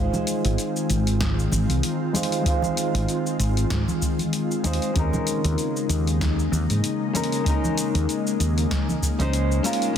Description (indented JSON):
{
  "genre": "sunset chillout",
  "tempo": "96 BPM",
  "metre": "4/4",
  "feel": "swing 56% on 16ths",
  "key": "unclear",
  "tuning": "A4 = 440 Hz",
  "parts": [
    { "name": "nylon-string guitar", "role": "accompaniment", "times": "0.0-10.0 s", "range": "Ab3 to C5", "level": "-27 LUFS", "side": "right 1 dB", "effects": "auto-pan, low-pass filter, tape echo" },
    { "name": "ethereal airy pad", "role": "sustained chords", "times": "0.0-10.0 s", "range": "Db3 to F4", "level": "-27 LUFS", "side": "left 2 dB", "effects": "ensemble chorus, built-in reverb" },
    { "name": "woody fretless electric bass", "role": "bass", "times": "0.0-9.6 s", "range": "Ab1 to Ab2", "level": "-22 LUFS", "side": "equal", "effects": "none" },
    { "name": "deep house drum kit", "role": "drums", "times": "0.1-10.0 s", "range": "cabasa, hi-hat, snare drum", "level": "-30 LUFS", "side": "left 1 dB", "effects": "overdrive" },
    { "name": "congas", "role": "percussion", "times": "0.1-9.3 s", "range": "none", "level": "-31 LUFS", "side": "right 2 dB", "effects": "none" },
    { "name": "electronic kick drum", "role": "drums", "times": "1.2-9.2 s", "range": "none", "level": "-26 LUFS", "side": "equal", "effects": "none" }
  ],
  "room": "light reverb",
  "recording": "dense, heavily limited modern master",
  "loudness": "-21 LUFS",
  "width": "side -8 dB against mid",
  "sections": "0.0-10.0 A section",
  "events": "filter sweep on nylon-string guitar 0.0-10.0",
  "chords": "0.0 Ab6; 5.0 Eb7sus4"
}